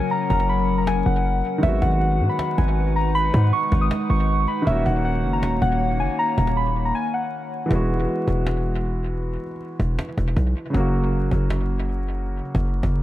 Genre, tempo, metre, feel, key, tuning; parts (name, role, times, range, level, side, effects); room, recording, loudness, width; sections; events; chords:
hip hop, trap; 158 BPM; 4/4; half-time; A4 = 440 Hz
muted felt-like synth keys; melody; 0.0-7.7 s; E5 to D#6; -25 LUFS; equal; chorus, low-pass filter, dub echo
warm concert grand piano; accompaniment; 0.0-13.0 s; C#3 to F#4; -27 LUFS; equal; low-pass filter, dub echo
warbly tape-like pad; sustained chords; 0.0-7.7 s; F#3 to F#5; -27 LUFS; left 2 dB; chorus, built-in reverb
cajon; drums; 0.0-12.9 s; -31 LUFS; equal; dub echo
hard-hitting 808-style bass; bass; 0.3-13.0 s; D#1 to G#2; -22 LUFS; equal
light reverb, small room ambience; echo-heavy mix, vinyl crackle; -19 LUFS; side -14 dB against mid
0.0-7.7 A section; 7.7-13.0 B section
break 6.9-7.7
0.0 F#; 1.6 G#m7; 4.7 D#m7; 7.7 Eadd9; 10.7 F#